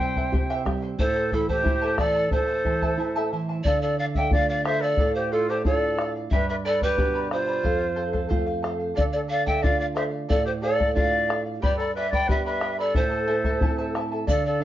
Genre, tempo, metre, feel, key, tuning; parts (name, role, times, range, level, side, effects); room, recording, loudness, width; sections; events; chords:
andean folk, Andean ensemble; 90 BPM; 2/4; straight; A4 = 438 Hz
breathy bright pan flute; melody; 0.0-14.6 s; A4 to G5; -26 LUFS; right 1 dB; plate reverb
breathy bright large quena; second line; 0.0-14.6 s; E4 to E5; -29 LUFS; left 2 dB
charango; accompaniment; 0.0-14.6 s; E4 to B5; -30 LUFS; equal
nylon-string guitar; accompaniment; 0.0-14.6 s; F2 to A4; -30 LUFS; right 4 dB
bombo; percussion; 0.2-14.4 s; -26 LUFS; left 1 dB
egg shaker; percussion; 14.3-14.4 s; -46 LUFS; left 5 dB
moderate studio reverb, RT60 0.6 s; dark, warm production, nothing above 7.5 kHz; -22 LUFS; side -13 dB against mid
0.0-3.6 A section; 3.6-14.3 B section
break 3.0-3.6
0.0 C; 1.0 Am; 3.6 Dm; 6.3 G; 7.6 F; 9.0 Dm; 11.6 G; 13.0 Am